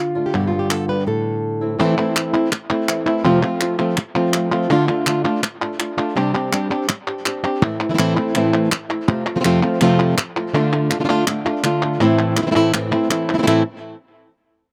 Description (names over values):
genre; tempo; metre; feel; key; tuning
flamenco; 165 BPM; 4/4; straight; A minor; A4 = 439 Hz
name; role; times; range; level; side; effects
flamenco guitar; melody; 0.0-13.6 s; F2 to B4; -20 LUFS; equal; none
flamenco guitar; stabs; 0.2-13.6 s; F2 to G4; -27 LUFS; equal; slapback echo
palmas hand claps; percussion; 0.3-13.6 s; none; -26 LUFS; equal; none
room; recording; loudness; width
little or no reverb; recorded outdoors, with no room sound; -19 LUFS; mono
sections
0.0-1.8 A section; 1.8-13.5 B section; 13.5-14.7 C section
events
break 1.1-1.8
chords
0.3 G; 1.1 Am; 3.3 F; 4.7 Dm; 6.2 Csus2; 7.6 Am; 9.1 F; 10.5 Dm; 12.0 Am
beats
| 0.34 0.70 1.07 1.43 | 1.80 2.16 2.52 2.89 | 3.25 3.62 3.98 4.34 | 4.71 5.07 5.43 5.80 | 6.16 6.53 6.89 7.26 | 7.62 7.99 8.35 8.72 | 9.08 9.45 9.81 10.18 | 10.54 10.91 11.27 11.64 | 12.01 12.37 12.74 13.10 | 13.47